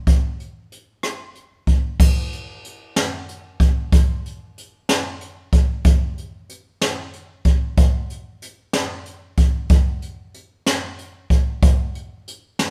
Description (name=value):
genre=pop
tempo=62 BPM (dotted quarters)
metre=6/8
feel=straight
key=none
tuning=none
part: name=jazz brush drum kit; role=drums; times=0.1-12.7 s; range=crash cymbal, hi-hat, kick drum, rim click, snare drum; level=-19 LUFS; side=equal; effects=none
room=little or no reverb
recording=band playing live in one room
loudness=-20 LUFS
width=mono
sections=0.0-2.0 A section; 2.0-12.7 B section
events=none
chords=none